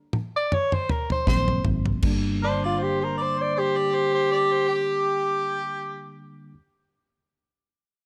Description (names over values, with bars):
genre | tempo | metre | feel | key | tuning
straight-eighth soul blues | 79 BPM | 4/4 | swing 55% on 16ths | G minor | A4 = 443 Hz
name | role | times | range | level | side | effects
damped 70s drum kit | drums | 0.1-2.2 s | crash cymbal, kick drum, snare drum, toms | -28 LUFS | equal | none
mellow tenor saxophone | melody | 0.4-5.8 s | D4 to D5 | -26 LUFS | equal | none
tine electric piano | accompaniment | 1.3-6.5 s | D3 to D4 | -34 LUFS | equal | none
fingered electric bass | bass | 1.3-6.5 s | G1 to Bb1 | -30 LUFS | equal | none
mellow harmonica | second line | 2.4-6.2 s | G4 to D5 | -30 LUFS | equal | overdrive
room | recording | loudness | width
light reverb, small room ambience | none | -24 LUFS | mono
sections
0.0-2.0 A section; 2.0-5.1 B section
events
drum fill 0.0-2.0; stop 0.0-1.3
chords
0.0 N.C.; 1.3 Ab7; 2.0 Gm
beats
0.51 1.27 | 2.03 2.79 3.55 4.30